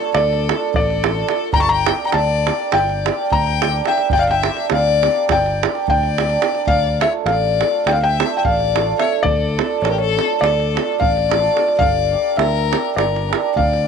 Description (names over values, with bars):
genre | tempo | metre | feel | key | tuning
balkan folk, Balkan wedding band | 211 BPM (eighths) | 9/8 | straight | G dorian sharp4 | A4 = 441 Hz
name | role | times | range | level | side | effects
felt-muted upright piano | melody | 0.0-13.9 s | Bb4 to C#6 | -20 LUFS | left 2 dB | none
clear violin | second line | 0.0-13.9 s | G4 to A5 | -21 LUFS | left 11 dB | none
hammered dulcimer | accompaniment | 0.0-13.9 s | A3 to Bb4 | -22 LUFS | right 12 dB | none
overdriven fingered electric bass | bass | 0.1-13.9 s | G1 to D2 | -22 LUFS | equal | none
davul | percussion | 0.1-13.8 s | none | -22 LUFS | right 6 dB | none
room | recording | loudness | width
light reverb, small room ambience | 1960s-style stereo with parts hard left and right | -15 LUFS | side -6 dB against mid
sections
0.0-13.9 A section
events
none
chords
0.0 Dm; 1.5 Gm; 6.7 Dm; 11.8 Gm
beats
0.11 0.39 0.68 0.97 1.25 | 1.54 1.83 2.11 2.40 2.69 2.97 3.26 3.54 3.83 | 4.11 4.40 4.68 4.97 5.26 5.54 5.83 6.11 6.40 | 6.68 6.97 7.25 7.54 7.82 8.10 8.39 8.67 8.96 | 9.24 9.52 9.81 10.09 10.37 10.66 10.94 11.22 11.51 | 11.79 12.07 12.36 12.64 12.93 13.21 13.49 13.78